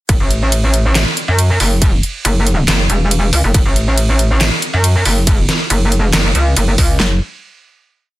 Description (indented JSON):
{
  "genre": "heavy wobble dubstep",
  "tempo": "139 BPM",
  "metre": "4/4",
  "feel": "half-time",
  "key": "F# minor",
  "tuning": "A4 = 436 Hz",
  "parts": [
    { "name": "metallic wobble bass", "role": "bass", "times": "0.1-7.2 s", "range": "E1 to F#2", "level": "-13 LUFS", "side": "equal", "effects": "chorus, overdrive" },
    { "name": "dubstep drum kit", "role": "drums", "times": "0.1-7.1 s", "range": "kick drum, snare drum", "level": "-14 LUFS", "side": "equal", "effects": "none" },
    { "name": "dubstep drum kit", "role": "drums", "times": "0.1-6.9 s", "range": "handclaps, hi-hat, ride cymbal, snare drum", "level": "-17 LUFS", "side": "right 1 dB", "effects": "overdrive" }
  ],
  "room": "little or no reverb",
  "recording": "dense, heavily limited modern master",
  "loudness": "-11 LUFS",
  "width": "side -17 dB against mid",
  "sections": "0.1-7.0 drop; 7.0-8.2 final note",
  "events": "drop 0.1-7.0",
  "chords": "none"
}